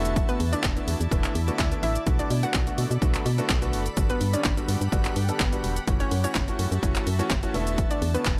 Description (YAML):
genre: dance-pop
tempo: 126 BPM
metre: 4/4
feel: straight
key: B minor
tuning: A4 = 440 Hz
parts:
  - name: clear grand piano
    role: accompaniment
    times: 0.0-8.3 s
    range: D3 to A4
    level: -34 LUFS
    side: equal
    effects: sidechain pumping
  - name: shimmering ambient pad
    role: sustained chords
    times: 0.0-8.4 s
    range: E4 to B5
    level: -39 LUFS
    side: equal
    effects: chorus, built-in reverb, sidechain pumping
  - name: organ-like FM bass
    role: bass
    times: 0.0-8.4 s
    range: E1 to B2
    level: -29 LUFS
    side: equal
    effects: sidechain pumping
  - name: punchy analog drum machine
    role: drums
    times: 0.1-8.4 s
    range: handclaps, hi-hat, kick drum, shaker, snare drum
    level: -29 LUFS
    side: equal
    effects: none
  - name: hollow square pluck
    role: melody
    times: 0.3-8.4 s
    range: B3 to F#5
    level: -34 LUFS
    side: equal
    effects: chorus, sidechain pumping, digital delay
room: little or no reverb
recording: none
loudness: -25 LUFS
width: mono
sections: 0.0-8.4 A section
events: none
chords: 0.0 E7sus4; 2.1 Bm7; 4.0 Gmaj7; 5.9 F#m7; 7.5 E7sus4